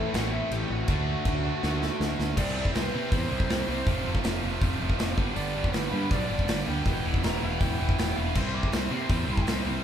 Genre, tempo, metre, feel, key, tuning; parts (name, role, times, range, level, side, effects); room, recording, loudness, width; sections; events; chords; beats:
punk rock; 161 BPM; 4/4; straight; A4 = 440 Hz
bluesy overdriven lead guitar; melody; 0.0-9.5 s; A3 to D6; -35 LUFS; equal; distortion
crunchy overdriven guitar; riff; 0.0-9.8 s; E2 to D4; -33 LUFS; left 6 dB
distorted electric guitar; riff; 0.0-9.8 s; F2 to F#4; -33 LUFS; right 7 dB; overdrive
fuzz picked electric bass; bass; 0.1-9.8 s; E1 to C3; -31 LUFS; equal; overdrive
big rock drum kit; drums; 0.1-9.6 s; crash cymbal, hi-hat, kick drum, snare drum; -29 LUFS; equal
light reverb; band playing live in one room; -25 LUFS; side -9 dB against mid
0.0-2.4 A section; 2.4-9.8 B section
half time 0.0-2.4; drum fill 1.6-2.4; lead electric guitar solo 2.4-9.8
0.0 Am; 0.9 D; 2.4 C; 3.9 F; 5.2 G; 6.9 Em; 8.4 C
0.14 0.51 | 0.89 1.26 1.63 2.00 | 2.38 2.75 3.12 3.50 | 3.87 4.24 4.62 4.99 | 5.36 5.74 6.11 6.49 | 6.86 7.23 7.61 7.98 | 8.36 8.73 9.10 9.48